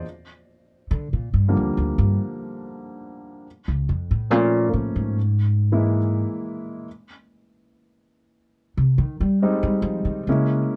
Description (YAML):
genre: jazz ballad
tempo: 70 BPM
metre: 4/4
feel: swing 68% on 8ths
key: unclear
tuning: A4 = 440 Hz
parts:
  - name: clear grand piano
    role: accompaniment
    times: 0.0-10.8 s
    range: D3 to E4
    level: -27 LUFS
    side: equal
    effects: none
  - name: upright bass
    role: bass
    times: 0.9-10.6 s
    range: Db2 to Ab3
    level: -23 LUFS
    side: equal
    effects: none
room: little or no reverb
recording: dry, close 1970s-style studio recording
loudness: -22 LUFS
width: mono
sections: 0.0-10.8 A section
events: upright bass solo 0.0-10.8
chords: 0.0 Ebmaj9 (rootless); 3.5 Bbmmaj7/Db; 5.2 E/G#; 6.9 Fm9 (rootless)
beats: | 0.04 0.90 1.75 2.60 | 3.46 4.31 5.16 6.01 | 6.87 7.71 8.57 9.42 | 10.27